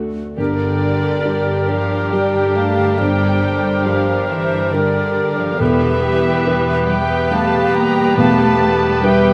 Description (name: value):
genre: cinematic, emotional film score for orchestra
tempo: 69 BPM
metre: 3/4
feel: rubato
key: G dorian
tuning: A4 = 441 Hz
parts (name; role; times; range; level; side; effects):
- felt-muted upright piano; accompaniment; 0.0-9.3 s; E1 to D5; -23 LUFS; equal; none
- muted studio viola section; accompaniment; 0.0-9.3 s; G3 to F#4; -27 LUFS; equal; none
- concert harp; arpeggios; 0.0-9.3 s; G2 to D5; -31 LUFS; equal; none
- muted studio cello section; bass; 0.0-9.3 s; D2 to Bb3; -25 LUFS; equal; none
- muted studio violin section; melody; 0.4-9.3 s; D5 to Bb5; -28 LUFS; equal; none
- clear clarinet; second line; 0.4-9.3 s; G4; -31 LUFS; equal; none
- clear oboe; second line; 0.4-9.3 s; Bb4 to B4; -26 LUFS; equal; none
- mellow hollow silver concert flute; second line; 0.4-9.3 s; Bb4 to G5; -26 LUFS; equal; none
- muted studio violin section; second line; 0.4-9.3 s; G4; -31 LUFS; equal; none
- mellow French horn section; sustained chords; 0.4-9.3 s; G4 to C5; -24 LUFS; equal; none
- muted studio double bass section; bass; 0.4-9.3 s; E2 to G2; -28 LUFS; equal; none
room: moderate scoring stage reverb, RT60 1.8 s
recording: none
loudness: -16 LUFS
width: mono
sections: 0.4-9.3 A section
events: none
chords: 0.4 Gm; 5.6 Em